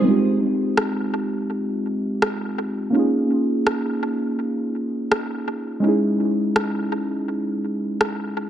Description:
contemporary R&B; 83 BPM; 4/4; swing 54% on 16ths; A4 = 439 Hz
muted felt-like synth keys; accompaniment; 0.0-8.5 s; G3 to Ab4; -21 LUFS; right 1 dB; chorus, low-pass filter, analog delay
electronic rim click; drums; 0.8-8.2 s; -24 LUFS; equal; analog delay
light reverb; echo-heavy mix, nothing above 10.6 kHz; -20 LUFS; side -10 dB against mid
0.1-8.5 A section
filter sweep on synth keys 0.1-8.5
0.1 Fm7; 2.9 Eb7sus4; 5.8 Dbmadd9

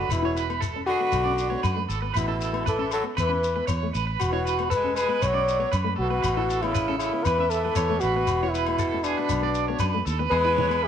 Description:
highlife guitar band; 117 BPM; 4/4; swing 54% on 16ths; A major; A4 = 442 Hz
trumpet with bucket mute; melody; 0.0-10.9 s; D4 to C#5; -26 LUFS; left 3 dB; slapback echo
growling tenor saxophone; second line; 0.0-10.9 s; B2 to G#3; -33 LUFS; right 9 dB
electric guitar at the edge of break-up; arpeggios; 0.0-10.9 s; G#4 to E5; -30 LUFS; right 9 dB; tremolo, slapback echo
fingered electric bass; bass; 0.0-10.9 s; E1 to F#2; -29 LUFS; right 1 dB
agogo bells; percussion; 0.1-10.8 s; -35 LUFS; left 13 dB
shekere; percussion; 0.1-10.2 s; -32 LUFS; left 3 dB
nylon-string guitar; accompaniment; 0.2-10.9 s; A3 to E4; -35 LUFS; left 7 dB
congas; percussion; 10.6-10.7 s; -32 LUFS; right 8 dB
moderate echo chamber reverb, RT60 1.9 s, small room ambience; 1960s-style stereo with parts hard left and right; -22 LUFS; side -8 dB against mid
0.0-10.3 A section
0.1 E; 1.1 Bmadd9; 2.1 Asus2; 4.2 Eadd9; 5.2 Bmadd9; 6.2 Asus2; 8.3 E; 9.3 Bm; 10.3 E

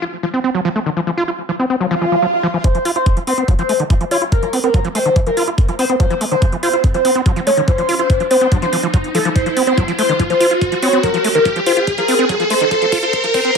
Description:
psychedelic trance; 143 BPM; 4/4; straight; F phrygian dominant; A4 = 436 Hz
overdriven acid bass; riff; 0.0-13.6 s; Eb3 to F4; -19 LUFS; moving between left 3 dB and right 4 dB; distortion, auto-pan, sidechain pumping, tape echo
swell and riser; sound effects; 1.9-13.6 s; -20 LUFS; right 1 dB
overdriven synth lead; melody; 2.6-13.5 s; A4 to Db5; -17 LUFS; equal; phaser, sidechain pumping, tape echo
electronic hi-hat; drums; 2.6-13.6 s; -26 LUFS; equal
electronic kick drum; drums; 2.6-13.6 s; -15 LUFS; equal
moderate digital room reverb, RT60 0.9 s, digital ambience; high-pass filter; -13 LUFS; side -6 dB against mid
0.0-2.6 A section; 2.6-13.6 B section
swell 1.9-2.6; build-up 2.6-13.6; riser 2.6-13.6; filter sweep on acid bass 2.6-13.6; filter sweep 2.6-13.6; drum fill 9.4-13.6
0.0 F5

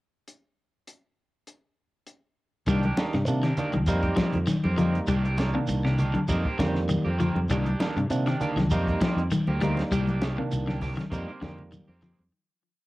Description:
afrobeat; 100 BPM; 4/4; swing 54% on 16ths; C minor; A4 = 441 Hz
compact cocktail drum kit; drums; 0.3-12.2 s; hi-hat, kick drum, snare drum; -33 LUFS; equal; cassette tape
barky tine electric piano; accompaniment; 2.7-11.9 s; Eb3 to Eb4; -32 LUFS; right 2 dB; overdrive, auto-pan
electric guitar at the edge of break-up; arpeggios; 2.7-12.2 s; C3 to G3; -29 LUFS; left 2 dB; tape echo
electric guitar at the edge of break-up; stabs; 2.7-12.2 s; Eb3 to G4; -34 LUFS; right 2 dB; wide subtle chorus
fingered electric bass; bass; 2.7-12.3 s; C2 to C3; -27 LUFS; equal
shekere; percussion; 2.7-12.2 s; -38 LUFS; right 2 dB
congas; percussion; 2.8-12.3 s; -32 LUFS; right 1 dB
small room reverb; home recording on cassette; -23 LUFS; side -18 dB against mid
0.3-2.7 pickup bar; 2.7-12.3 groove
fade-out 9.9-12.3
0.3 N.C.; 2.7 Cm9; 3.9 F9sus4; 5.1 Cm9; 6.3 F9sus4; 7.5 Cm9; 8.7 F9sus4; 9.9 Cm9; 11.1 F9sus4

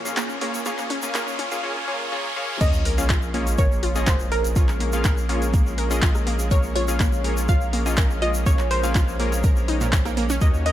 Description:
progressive house; 123 BPM; 4/4; straight; Bb minor; A4 = 440 Hz
lush unison pad; sustained chords; 0.0-10.7 s; Bb2 to C6; -34 LUFS; equal; chorus, sidechain pumping
supersaw stab; stabs; 0.0-10.7 s; Bb3 to F5; -28 LUFS; left 2 dB; sidechain pumping, tape echo
riser and sub drop; sound effects; 0.0-4.6 s; -30 LUFS; right 1 dB
deep house drum kit; drums; 0.1-10.7 s; crash cymbal, handclaps, hi-hat, rim click; -30 LUFS; equal; high-pass filter on hats, studio ambience, high-pass filter on snare, high-pass filter on cymbals
tube shaker; percussion; 0.1-10.6 s; -35 LUFS; left 2 dB
analog pluck; arpeggios; 0.2-10.7 s; Bb2 to Bb4; -31 LUFS; right 1 dB; chorus, sidechain pumping, tape echo
wide unison pluck; melody; 2.6-10.7 s; Bb4 to F5; -30 LUFS; right 1 dB; sidechain pumping, tape echo
soft synth bell; second line; 2.6-10.7 s; Bb4 to F5; -34 LUFS; equal; chorus, phaser, sidechain pumping, tape echo
round analog bass; bass; 2.6-10.7 s; Bb1 to Eb2; -25 LUFS; equal; sidechain pumping
electronic kick drum; drums; 2.6-10.5 s; -19 LUFS; equal; studio ambience
light reverb, digital ambience; high-pass filter; -19 LUFS; side -12 dB against mid
0.0-2.6 A section; 2.6-10.7 B section
build-up 0.0-2.6; riser 0.0-2.6; drop 2.6-10.7; impact 2.6-4.6
0.0 Bbm7

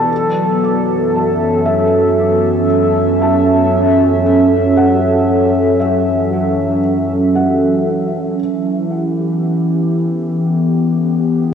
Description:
ambient; 58 BPM; 4/4; straight; A4 = 440 Hz
warbly tape-like pad; sustained chords; 0.0-11.5 s; B2 to F#5; -12 LUFS; equal; chorus, built-in reverb, phaser
felt-muted upright piano; arpeggios; 0.0-8.4 s; E5 to D6; -23 LUFS; equal; analog delay
warm sub bass; bass; 0.0-8.3 s; F#2; -23 LUFS; equal
organ-like drone; drone; 0.0-8.5 s; E3; -28 LUFS; left 1 dB; ensemble chorus, built-in reverb
wet lush hall reverb, RT60 2.3 s; home recording on cassette; -12 LUFS; side -7 dB against mid
0.0-8.4 A section; 8.4-11.5 B section
0.1 F#m7; 8.4 Em

